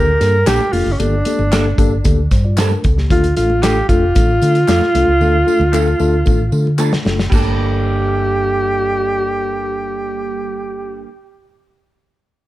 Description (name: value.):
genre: uptempo 1960s-style soul.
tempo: 114 BPM.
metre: 4/4.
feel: straight.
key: G minor.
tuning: A4 = 440 Hz.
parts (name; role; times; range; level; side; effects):
breathy alto saxophone; melody; 0.0-11.0 s; C#4 to Bb4; -17 LUFS; right 1 dB; tape echo.
mellow tine electric piano; accompaniment; 0.0-11.1 s; A3 to D5; -22 LUFS; left 4 dB; slow stereo tremolo.
hollow-body short-scale fingered electric bass; bass; 0.0-11.0 s; F1 to D3; -17 LUFS; equal; none.
warm soul drum kit; drums; 0.2-7.4 s; crash cymbal, hi-hat, kick drum, snare drum; -17 LUFS; equal; none.
congas; percussion; 0.2-7.6 s; none; -30 LUFS; right 4 dB; none.
tambourine and handclaps; percussion; 0.2-7.6 s; none; -32 LUFS; left 1 dB; none.
electric guitar through a small old amp; stabs; 0.5-11.1 s; G3 to A4; -24 LUFS; right 5 dB; phaser.
room: small room ambience.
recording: dark, warm production.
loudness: -13 LUFS.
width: side -15 dB against mid.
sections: 0.0-7.3 A section; 7.3-11.5 B section.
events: drum fill 5.2-7.3.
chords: 0.0 Gmadd9.